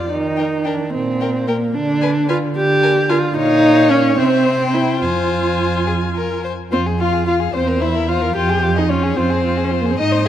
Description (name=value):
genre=quick classical-period movement for string quartet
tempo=73 BPM (dotted quarters)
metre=6/8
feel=rubato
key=Eb major, F minor from 3.4 s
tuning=A4 = 440 Hz
part: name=rich violin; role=second line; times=0.0-10.3 s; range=F4 to Eb5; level=-23 LUFS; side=left 5 dB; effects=none
part: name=warm viola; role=accompaniment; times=0.0-10.3 s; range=Bb3 to G4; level=-17 LUFS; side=right 1 dB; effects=none
part: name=warm cello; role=bass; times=0.1-10.3 s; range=E2 to Eb3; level=-21 LUFS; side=right 3 dB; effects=none
part: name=warm violin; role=melody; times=0.4-10.3 s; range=C5 to Ab5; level=-25 LUFS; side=left 11 dB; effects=none
room=moderate scoring stage reverb, RT60 2.0 s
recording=none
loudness=-14 LUFS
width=side -11 dB against mid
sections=0.0-6.7 A section; 6.7-10.3 B section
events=none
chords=0.1 Eb5; 1.8 N.C.; 2.6 Bb/D (rootless); 3.4 Bbm; 4.2 C; 5.0 Fm; 7.5 C7/E; 8.4 Fm